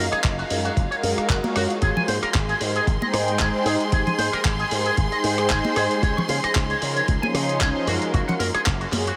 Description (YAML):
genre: nu-disco, nu disco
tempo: 114 BPM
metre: 4/4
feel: swing 55% on 16ths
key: Ab major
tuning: A4 = 439 Hz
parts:
  - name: warm symphonic string section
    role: sustained chords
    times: 0.0-9.2 s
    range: Eb4 to C6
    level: -31 LUFS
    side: equal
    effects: sidechain pumping
  - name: electric guitar with an envelope filter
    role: riff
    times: 0.0-9.2 s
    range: Gb4 to Db6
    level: -30 LUFS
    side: equal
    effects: subtle chorus, analog delay
  - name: slap bass with an envelope filter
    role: bass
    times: 0.0-9.1 s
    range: Gb1 to Db3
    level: -29 LUFS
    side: equal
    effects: none
  - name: dusty soul sampler-style drum kit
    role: drums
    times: 0.1-9.2 s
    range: handclaps, hi-hat, rim click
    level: -31 LUFS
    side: equal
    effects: none
  - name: electronic kick drum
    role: drums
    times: 0.2-8.8 s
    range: none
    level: -26 LUFS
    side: equal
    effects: none
  - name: warm analog pad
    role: accompaniment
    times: 0.5-9.0 s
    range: F3 to C6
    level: -29 LUFS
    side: equal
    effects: chorus, sidechain pumping, analog delay
  - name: congas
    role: percussion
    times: 1.4-9.0 s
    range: none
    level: -32 LUFS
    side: equal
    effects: none
room: wet huge ambient reverb, RT60 3.9 s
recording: dreamy mix soaked in reverb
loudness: -22 LUFS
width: mono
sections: 0.0-9.2 A section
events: none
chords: 0.0 Gbmaj9; 1.8 Abmaj7; 6.0 Dbmaj9; 7.9 Gbmaj9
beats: 0.24 0.77 1.29 | 1.82 2.35 2.87 3.40 | 3.92 4.45 4.98 5.50 | 6.03 6.56 7.08 7.61 | 8.13 8.66